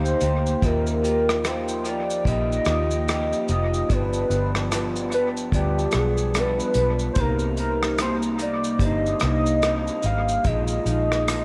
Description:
indie pop, bedroom pop; 73 BPM; 4/4; swing 60% on 16ths; Eb major; A4 = 440 Hz
warm velvety synth lead; melody; 0.0-11.4 s; G4 to F5; -28 LUFS; equal; subtle chorus, dub echo
bell-like tine electric piano; accompaniment; 0.0-11.4 s; G3 to Bb5; -33 LUFS; equal; dub echo
electric guitar through a small old amp; accompaniment; 0.0-11.4 s; G2 to G4; -32 LUFS; equal; subtle chorus, warbly pitch drift
warbly tape-like pad; sustained chords; 0.0-11.4 s; C3 to G5; -36 LUFS; equal
vintage muted fingered electric bass; bass; 0.0-11.4 s; F1 to Eb2; -28 LUFS; equal
unplugged drum kit; drums; 0.1-11.4 s; hi-hat, kick drum, rim click, shaker; -30 LUFS; equal; vintage 12-bit sampler grit, dub echo
light reverb, small room ambience; echo-heavy mix; -23 LUFS; mono
0.6-11.4 A section
tine electric piano fill 0.0-0.6
0.0 Eb; 0.6 Ebadd9; 3.9 G7; 7.2 Cm7; 10.4 Bb7sus4

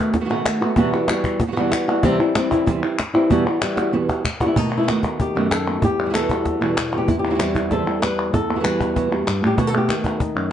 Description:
flamenco; 191 BPM; 4/4; straight; E harmonic minor; A4 = 440 Hz
flamenco guitar; melody; 0.0-10.5 s; E2 to B4; -20 LUFS; left 1 dB
flamenco guitar; stabs; 0.0-10.2 s; E2 to F#4; -24 LUFS; right 4 dB
cajon; percussion; 0.1-10.5 s; -24 LUFS; left 2 dB
palmas hand claps; percussion; 0.3-10.5 s; -27 LUFS; left 2 dB
light reverb; dark, warm production, nothing above 10.6 kHz; -17 LUFS; side -10 dB against mid
0.0-4.6 A section; 4.6-10.5 B section
drum fill 3.6-4.6
0.0 B7; 0.8 Emadd9; 2.0 C/E; 3.3 Emadd9; 4.6 B7; 5.8 Emadd9; 7.1 C/E; 8.3 Emadd9; 9.6 B7

